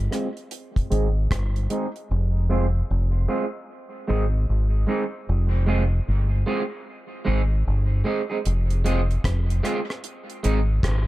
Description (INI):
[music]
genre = dub reggae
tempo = 76 BPM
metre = 4/4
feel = swing 64% on 16ths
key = F minor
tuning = A4 = 441 Hz
[part]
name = deep dub fingered electric bass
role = bass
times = 0.0-11.1 s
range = F1 to Ab1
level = -21 LUFS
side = equal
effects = none
[part]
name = electric guitar at the edge of break-up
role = accompaniment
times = 0.1-10.6 s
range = Ab3 to Ab4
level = -28 LUFS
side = right 2 dB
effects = lush chorus, low-pass filter, dub echo
[part]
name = deep reggae drum kit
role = drums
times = 0.1-2.1, 8.5-11.1 s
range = hi-hat, kick drum, rim click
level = -27 LUFS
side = equal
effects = none
[sound]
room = light reverb, small room ambience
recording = dark, warm production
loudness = -21 LUFS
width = side -16 dB against mid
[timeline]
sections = 0.0-11.1 A section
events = filter sweep on clean electric guitar 0.0-11.1; part muted 2.1-8.5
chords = 0.0 Fm; 0.5 Ab; 2.1 Fm; 3.7 Ab; 5.3 Fm; 6.9 Ab; 8.5 Fm; 10.0 Ab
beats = 0.52 1.31 | 2.10 2.90 3.69 4.49 | 5.28 6.07 6.87 7.66 | 8.46 9.25 10.04 10.84